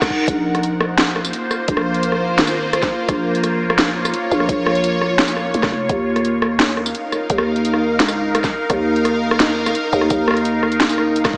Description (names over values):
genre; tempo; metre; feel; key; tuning
half-time drum and bass; 171 BPM; 4/4; half-time; Bb minor; A4 = 439 Hz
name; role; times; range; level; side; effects
bowed-like drone; sustained chords; 0.0-11.4 s; Bb3 to Gb5; -19 LUFS; equal; built-in reverb, phaser, sidechain pumping
drum and bass drum kit; drums; 0.0-11.3 s; hi-hat, rim click, snare drum, tambourine; -19 LUFS; equal; overdrive
electronic kick drum; drums; 0.0-11.4 s; none; -25 LUFS; equal; overdrive
growling 808-style bass; bass; 0.3-11.4 s; F1 to Eb2; -21 LUFS; equal; none
room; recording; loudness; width
wet plate reverb, RT60 2.0 s; dreamy mix soaked in reverb, small speaker sound; -15 LUFS; side -36 dB against mid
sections
0.0-11.4 A section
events
none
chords
0.3 Bbm; 5.9 Eb5